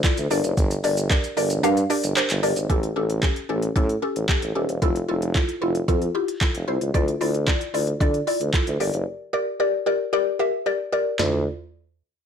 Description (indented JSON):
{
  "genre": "dance-pop",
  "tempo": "113 BPM",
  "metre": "4/4",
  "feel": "straight",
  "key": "D minor",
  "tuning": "A4 = 439 Hz",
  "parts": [
    { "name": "mallet-like synth pluck", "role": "accompaniment", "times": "0.0-11.4 s", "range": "C#4 to F5", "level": "-24 LUFS", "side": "left 2 dB", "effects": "chorus, phaser, sidechain pumping" },
    { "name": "smooth R&B drum kit", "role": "drums", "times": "0.0-11.3 s", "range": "handclaps, hi-hat, kick drum, shaker, snare drum, toms", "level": "-23 LUFS", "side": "right 1 dB", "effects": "overdrive" },
    { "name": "warm tuba", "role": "bass", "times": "0.2-11.4 s", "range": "Eb1 to D3", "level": "-25 LUFS", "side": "right 1 dB", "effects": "sidechain pumping" }
  ],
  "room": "moderate studio reverb, RT60 0.6 s",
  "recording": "blown-out, overdriven recording, overdrive",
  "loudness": "-20 LUFS",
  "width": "side -8 dB against mid",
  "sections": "0.0-2.7 A section; 2.7-11.2 B section; 11.2-12.3 C section",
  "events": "kick muted 1.6-2.7; drums muted 9.1-11.2",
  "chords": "0.3 Gm; 2.7 A7; 4.8 Fmaj7; 6.9 Dmadd9; 8.8 Gm; 11.2 Dmadd9"
}